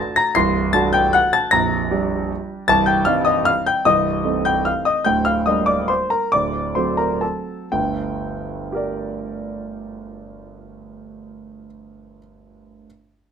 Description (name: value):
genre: classical, piano waltz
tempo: 116-163 BPM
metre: 3/4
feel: rubato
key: G minor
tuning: A4 = 437 Hz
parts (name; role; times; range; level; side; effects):
- clear concert grand piano; solo; 0.0-12.9 s; Bb0 to C7; -17 LUFS; equal; none
room: light reverb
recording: close, detailed microphones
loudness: -17 LUFS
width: side -7 dB against mid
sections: 0.0-7.7 A section; 7.7-10.7 B section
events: slowing down 4.5-7.7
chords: 0.4 D7/C; 1.5 Gm/Bb; 2.7 Cm; 5.1 Gm/D; 6.3 D7; 7.7 Gm